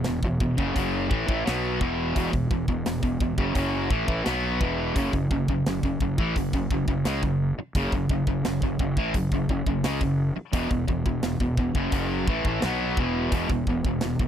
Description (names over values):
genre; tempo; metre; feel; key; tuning
heavy metal; 86 BPM; 4/4; straight; unclear; A4 = 440 Hz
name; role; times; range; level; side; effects
distorted electric guitar; riff; 0.0-14.3 s; E2 to B3; -25 LUFS; equal; distortion
fuzz fingered electric bass; bass; 0.0-14.3 s; E1 to C#2; -30 LUFS; equal; overdrive
tight metal drum kit; drums; 0.0-14.3 s; hi-hat, kick drum, snare drum; -27 LUFS; equal; none
room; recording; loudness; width
little or no reverb; dry, close 1970s-style studio recording; -23 LUFS; side -9 dB against mid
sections
0.0-14.3 A section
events
none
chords
0.0 E5; 5.0 F#5; 10.5 E5